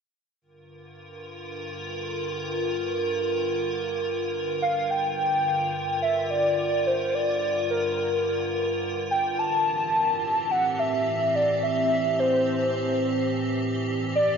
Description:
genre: IDM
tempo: 107 BPM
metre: 4/4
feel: straight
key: G dorian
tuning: A4 = 440 Hz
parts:
  - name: icy glass pad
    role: sustained chords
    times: 1.1-14.4 s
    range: G2 to Bb4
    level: -28 LUFS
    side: right 1 dB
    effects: chorus, built-in reverb
  - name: warbly nostalgic lead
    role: melody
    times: 4.6-14.4 s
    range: Bb4 to A5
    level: -24 LUFS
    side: equal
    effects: analog chorus, ping-pong delay
room: moderate lush hall reverb, RT60 2.4 s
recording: nothing above 8.0 kHz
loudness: -23 LUFS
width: side -6 dB against mid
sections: 0.4-4.9 A section; 4.9-14.4 B section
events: none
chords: 0.4 Gm7; 9.4 Am7; 13.9 Gm7

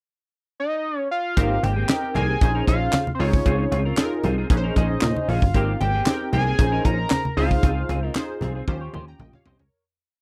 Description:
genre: early-eighties boogie funk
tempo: 115 BPM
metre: 4/4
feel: straight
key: unclear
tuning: A4 = 441 Hz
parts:
  - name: fat analog lead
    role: melody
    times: 0.6-8.4 s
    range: C5 to Bb5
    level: -28 LUFS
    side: equal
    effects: slapback echo
  - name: funky polysynth comp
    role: accompaniment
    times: 1.4-9.8 s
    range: C4 to Bb5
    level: -31 LUFS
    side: equal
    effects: chorus
  - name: semi-hollow electric guitar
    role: riff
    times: 1.4-9.6 s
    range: Bb3 to Db5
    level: -33 LUFS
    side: equal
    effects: analog chorus
  - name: plucky analog bass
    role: bass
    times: 1.4-9.7 s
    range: G1 to Bb2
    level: -26 LUFS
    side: equal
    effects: none
  - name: tight funk drum kit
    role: drums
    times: 1.4-9.7 s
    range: handclaps, hi-hat, kick drum, snare drum, toms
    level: -23 LUFS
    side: equal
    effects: none
  - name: congas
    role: percussion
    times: 1.6-9.4 s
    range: none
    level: -33 LUFS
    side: equal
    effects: none
room: little or no reverb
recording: dry, close 1970s-style studio recording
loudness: -22 LUFS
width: mono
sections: 0.0-1.4 pickup bar; 1.4-9.7 verse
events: fade-out 7.6-9.7; drum fill 8.7-9.7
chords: 0.0 N.C.; 1.4 Abmaj9; 2.4 Bbm11; 3.2 Dbmaj7; 4.5 Bbm11; 5.5 Abmaj9; 6.6 Bbm11; 7.4 Dbmaj7; 8.7 Eb13

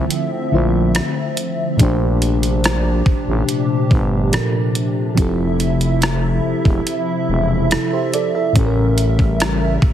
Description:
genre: contemporary R&B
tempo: 71 BPM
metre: 4/4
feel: straight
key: unclear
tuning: A4 = 440 Hz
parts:
  - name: mellow FM electric piano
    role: accompaniment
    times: 0.0-9.9 s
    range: A2 to E5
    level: -20 LUFS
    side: equal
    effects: chorus, phaser
  - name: hollow soft pad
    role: sustained chords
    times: 0.0-9.9 s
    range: Bb2 to E5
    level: -21 LUFS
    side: left 1 dB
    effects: ensemble chorus
  - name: growling FM bass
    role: bass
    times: 0.0-9.9 s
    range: E1 to Bb1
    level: -19 LUFS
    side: equal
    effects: none
  - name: detuned 8-bit digital drum machine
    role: drums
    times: 0.1-9.9 s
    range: hi-hat, kick drum, rim click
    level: -18 LUFS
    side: equal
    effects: none
room: little or no reverb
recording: heavily compressed radio sound, multiband compression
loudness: -15 LUFS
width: side -10 dB against mid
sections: 0.0-9.9 A section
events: none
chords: 0.0 Dm9; 1.8 Bbmaj13; 5.2 Fmaj7; 8.6 A7b9

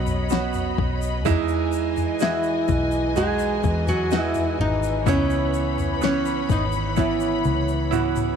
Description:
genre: pop ballad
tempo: 63 BPM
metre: 4/4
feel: straight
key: E major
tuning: A4 = 440 Hz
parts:
  - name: nylon-string guitar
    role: melody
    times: 0.0-8.4 s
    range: E3 to D#5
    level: -25 LUFS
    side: left 1 dB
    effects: tape echo
  - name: clear concert grand piano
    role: accompaniment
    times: 0.0-8.4 s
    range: C#3 to D#5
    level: -26 LUFS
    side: right 14 dB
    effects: none
  - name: warm studio string section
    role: sustained chords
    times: 0.0-8.4 s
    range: E3 to B5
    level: -30 LUFS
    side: left 4 dB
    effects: none
  - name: vintage muted fingered electric bass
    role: bass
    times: 0.0-8.4 s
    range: G#1 to E2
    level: -27 LUFS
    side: equal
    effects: none
  - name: smooth R&B drum kit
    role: drums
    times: 0.1-8.4 s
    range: kick drum, snare drum, toms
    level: -27 LUFS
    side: left 5 dB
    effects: overdrive
  - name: egg shaker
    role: percussion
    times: 0.1-8.4 s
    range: none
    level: -44 LUFS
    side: left 16 dB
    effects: none
room: light reverb, small room ambience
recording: 1960s-style stereo with parts hard left and right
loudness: -20 LUFS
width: side -7 dB against mid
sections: 0.0-8.4 A section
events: drum fill 7.0-8.4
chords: 0.0 Badd9; 1.3 Emaj7; 5.1 C#m7

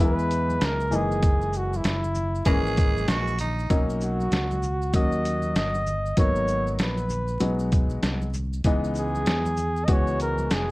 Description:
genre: hip hop, jazz-hop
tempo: 97 BPM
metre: 4/4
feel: swing 60% on 16ths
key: B major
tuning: A4 = 441 Hz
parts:
  - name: breathy flugelhorn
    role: melody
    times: 0.0-10.7 s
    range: E4 to D#5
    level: -28 LUFS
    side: equal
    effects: plate reverb
  - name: warm grand piano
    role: accompaniment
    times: 0.0-10.7 s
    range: E3 to F#4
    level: -28 LUFS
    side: left 2 dB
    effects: plate reverb
  - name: fingered electric bass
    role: bass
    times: 0.0-10.7 s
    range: E#1 to E2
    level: -28 LUFS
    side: equal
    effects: none
  - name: maracas and congas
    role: percussion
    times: 0.2-10.7 s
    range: none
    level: -40 LUFS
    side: equal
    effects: none
  - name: trip hop sampler-style drum kit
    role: drums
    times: 0.3-10.7 s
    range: hi-hat, kick drum, shaker, snare drum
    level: -24 LUFS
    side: equal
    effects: vintage 12-bit sampler grit
  - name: growling tenor saxophone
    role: second line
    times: 2.5-3.9 s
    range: D#4 to G#4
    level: -29 LUFS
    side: right 4 dB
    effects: none
room: light reverb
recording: vinyl crackle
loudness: -22 LUFS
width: side -20 dB against mid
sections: 0.0-10.7 A section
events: none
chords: 0.0 C#m7; 0.9 F#13; 3.7 Bmaj9; 6.2 G#m9; 8.7 C#m9

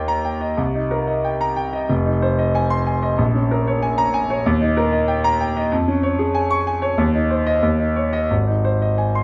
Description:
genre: classical, virtuoso piano study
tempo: 93 BPM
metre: 4/4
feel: uneven beats, rubato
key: unclear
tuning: A4 = 440 Hz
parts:
  - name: clear concert grand piano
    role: solo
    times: 0.0-9.2 s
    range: F1 to Db6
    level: -19 LUFS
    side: equal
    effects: none
room: moderate large studio reverb, RT60 0.9 s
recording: none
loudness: -19 LUFS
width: mono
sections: 0.0-9.2 A section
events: none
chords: 0.0 Eb; 0.6 Cm7; 1.9 Fm7; 3.2 Bbm7; 4.4 Eb; 5.7 Db/F; 7.0 Cm/Eb; 7.6 Dbsus2/Eb; 8.3 Ab

